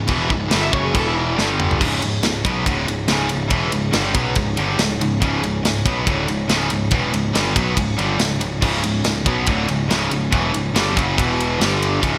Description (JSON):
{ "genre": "heavy metal", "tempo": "141 BPM", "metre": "4/4", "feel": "straight", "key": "C# phrygian", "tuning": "A4 = 438 Hz", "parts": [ { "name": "chamber organ, principal", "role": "sustained chords", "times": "0.0-12.2 s", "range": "C#3 to A4", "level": "-34 LUFS", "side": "equal", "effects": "none" }, { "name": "distorted electric guitar", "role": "riff", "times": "0.0-12.2 s", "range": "C#2 to B3", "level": "-26 LUFS", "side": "equal", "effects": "distortion" }, { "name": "heavy high-gain guitar", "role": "riff", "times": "0.0-12.2 s", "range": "C#2 to B3", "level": "-26 LUFS", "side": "equal", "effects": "distortion" }, { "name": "overdriven electric guitar", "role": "riff", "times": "0.0-1.8, 8.6-12.2 s", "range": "C#2 to B3", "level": "-30 LUFS", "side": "equal", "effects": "none" }, { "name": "fuzz picked electric bass", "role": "bass", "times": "0.0-12.2 s", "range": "C#1 to B1", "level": "-27 LUFS", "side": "equal", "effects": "overdrive" }, { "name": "tight metal drum kit", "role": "drums", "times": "0.1-12.1 s", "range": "crash cymbal, kick drum, ride cymbal, snare drum, toms", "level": "-24 LUFS", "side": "equal", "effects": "none" }, { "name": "high-gain lead guitar", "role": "melody", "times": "0.6-1.1 s", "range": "E4 to E5", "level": "-30 LUFS", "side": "equal", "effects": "distortion, delay" } ], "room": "light reverb, studio ambience", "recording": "bright 1980s-style digital production", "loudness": "-19 LUFS", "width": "mono", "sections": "0.0-1.8 A section; 1.8-12.2 B section", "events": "lead electric guitar solo 0.0-1.8; drum fill 1.4-1.8", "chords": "0.0 C#m; 0.9 E5; 1.4 G5; 1.8 C#m; 11.2 E5; 11.6 G5", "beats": "| 0.10 0.52 0.95 1.38 | 1.80 2.23 2.66 3.08 | 3.51 3.94 4.36 4.79 | 5.21 5.64 6.07 6.49 | 6.92 7.34 7.77 8.19 | 8.62 9.04 9.47 9.89 | 10.32 10.74 11.17 11.60 | 12.02" }